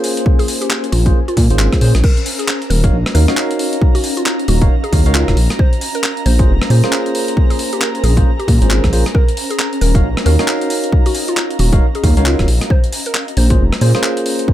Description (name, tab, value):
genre	UK garage, two-step garage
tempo	135 BPM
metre	4/4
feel	swing 60% on 16ths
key	Eb dorian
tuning	A4 = 440 Hz
part	bright tine electric piano	stabs	0.0-14.5 s	Bb3 to F5	-20 LUFS	right 1 dB	phaser, ping-pong delay
part	breakbeat sampler-style drum kit	drums	0.0-14.5 s	crash cymbal, handclaps, hi-hat, rim click	-20 LUFS	equal	overdrive
part	granular cloud pad	texture	0.0-14.5 s	Db4 to Ab5	-25 LUFS	equal	built-in reverb, sidechain pumping
part	electronic kick drum	drums	0.3-14.5 s	none	-13 LUFS	equal	none
part	mallet-like synth pluck	melody	0.4-14.0 s	F4 to C5	-25 LUFS	equal	chorus, digital delay
part	dark detuned saw bass	bass	0.9-13.9 s	Eb1 to Bb2	-12 LUFS	equal	tube saturation
part	airy breathy pad	sustained chords	2.0-14.5 s	Bb5	-30 LUFS	right 3 dB	chorus, sidechain pumping
room	little or no reverb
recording	none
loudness	-12 LUFS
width	side -13 dB against mid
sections	0.0-14.5 A section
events	none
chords	0.0 Bbm9; 2.0 Ebm9; 5.4 Bbm9; 9.1 Ebm9; 12.5 Bbm9